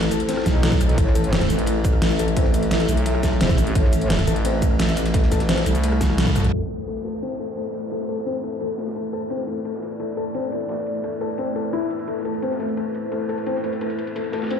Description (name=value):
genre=dark technical drum and bass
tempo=173 BPM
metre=4/4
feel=straight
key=A minor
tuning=A4 = 439 Hz
part: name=dark analog pad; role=sustained chords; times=0.0-14.6 s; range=A3 to E5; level=-27 LUFS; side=right 1 dB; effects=chorus, sidechain pumping
part: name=felt-muted upright piano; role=arpeggios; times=0.0-14.6 s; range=A3 to A4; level=-26 LUFS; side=left 4 dB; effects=sidechain pumping, low-pass filter, dub echo
part: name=growling FM bass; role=bass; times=0.0-6.5 s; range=A1 to C2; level=-22 LUFS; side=equal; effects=none
part: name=dubstep drum kit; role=drums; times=0.0-14.6 s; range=crash cymbal, hi-hat, rim click, shaker, snare drum, toms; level=-25 LUFS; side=equal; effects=overdrive, low-pass filter on hats, low-pass filter on perc, low-pass filter on snare, low-pass filter on toms, low-pass filter on cymbals, low-pass filter on room
part: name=crunchy breakbeat drum kit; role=drums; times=0.1-14.6 s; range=ride cymbal, snare drum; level=-38 LUFS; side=equal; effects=high-pass filter on cymbals, low-pass filter on cymbals, high-pass filter on snare, low-pass filter on snare, high-pass filter on room, low-pass filter on room
part: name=metallic wobble bass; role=bass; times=0.5-4.3 s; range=E1 to B1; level=-21 LUFS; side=equal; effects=chorus, overdrive
part: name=electronic kick drum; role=drums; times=0.5-6.3 s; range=none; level=-20 LUFS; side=equal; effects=overdrive
part: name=downlifter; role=sound effects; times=6.6-9.3 s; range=none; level=-42 LUFS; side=right 1 dB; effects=none
room=moderate lush hall reverb, RT60 1.8 s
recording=played on a big sound system in a bare room, large studio reverb, low-pass filter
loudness=-20 LUFS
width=side -8 dB against mid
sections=0.0-6.5 A section; 6.5-14.6 B section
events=drum fill 6.0-6.5; band accent 6.2; filter sweep on drum 6.5-14.6; filter sweep on felt piano 6.5-14.6; filter sweep 6.5-14.6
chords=0.0 Am